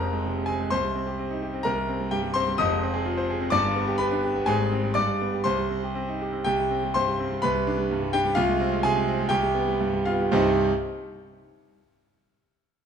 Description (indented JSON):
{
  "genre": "classical, virtuoso piano study",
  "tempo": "113-130 BPM",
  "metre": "2/4",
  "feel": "rubato",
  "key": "C minor",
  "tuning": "A4 = 443 Hz",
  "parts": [
    { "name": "clear concert grand piano", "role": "solo", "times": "0.0-10.7 s", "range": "F1 to Eb6", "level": "-22 LUFS", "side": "equal", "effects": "none" }
  ],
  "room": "moderate recital hall reverb, RT60 1.8 s",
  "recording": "none",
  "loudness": "-22 LUFS",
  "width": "side -7 dB against mid",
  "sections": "0.0-6.5 A section; 6.5-10.3 B section",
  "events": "none",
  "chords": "0.0 Fm; 0.7 Cm; 1.7 C5; 2.6 Fm7; 3.5 G; 4.5 Abmaj7; 5.0 G; 5.4 Cm; 6.5 C5; 7.4 G/C; 8.4 Fm/C; 9.3 G7/C; 10.3 Cm"
}